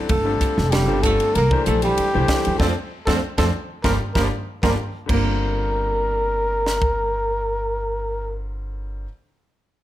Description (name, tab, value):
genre	electric jazz fusion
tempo	96 BPM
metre	4/4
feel	straight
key	G dorian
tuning	A4 = 440 Hz
part	bright grand piano	accompaniment	0.0-9.1 s	D3 to C5	-28 LUFS	left 4 dB	none
part	breathy trumpet	melody	0.1-8.3 s	G4 to Bb4	-23 LUFS	left 1 dB	none
part	archtop guitar, miked and amplified	second line	0.1-9.1 s	F3 to C4	-27 LUFS	right 6 dB	none
part	upright bass	bass	0.1-9.1 s	F1 to F2	-24 LUFS	equal	none
part	crisp fusion drum kit	drums	0.1-7.0 s	crash cymbal, hi-hat, kick drum, ride cymbal, snare drum	-24 LUFS	equal	none
room	light reverb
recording	none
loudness	-18 LUFS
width	side -14 dB against mid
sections	0.0-5.1 A section; 5.1-7.6 B section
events	band accent 2.6-5.1; drum fill 4.5-5.1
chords	0.1 Gsus2; 1.4 C9; 2.6 F6; 3.8 Gm7